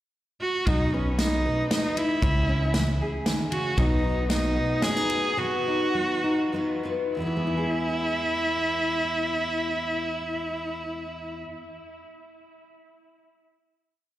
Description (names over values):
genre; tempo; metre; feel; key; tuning
indie folk with a building arrangement; 92-116 BPM; 3/4; straight; E major; A4 = 440 Hz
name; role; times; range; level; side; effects
rich cello; melody; 0.4-11.4 s; C#4 to G#4; -27 LUFS; right 1 dB; slapback echo, analog delay
fingerpicked steel-string acoustic guitar; accompaniment; 0.7-11.8 s; E2 to B4; -31 LUFS; left 1 dB; slapback echo
fingered electric bass; bass; 0.7-4.6 s; B1 to C#2; -26 LUFS; equal; none
natural country drum kit; drums; 0.7-5.2 s; kick drum, ride cymbal, snare drum; -28 LUFS; equal; none
picked twelve-string acoustic guitar; accompaniment; 3.8-11.5 s; B2 to B4; -34 LUFS; left 5 dB; slapback echo
room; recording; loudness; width
little or no reverb; live gig heard through the venue's PA, recital hall reverb; -23 LUFS; side -14 dB against mid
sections
0.0-0.7 pickup bar; 0.7-7.2 pre-chorus; 7.2-11.1 final chord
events
slowing down 3.8-7.2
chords
0.0 N.C.; 0.7 B; 2.2 C#m; 3.8 B; 7.2 E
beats
0.15 | 0.67 1.19 1.71 | 2.22 2.74 3.26 | 3.78 4.30 4.83 | 5.37 5.94 6.53 | 7.16 7.81 8.46 | 9.11 9.76 10.41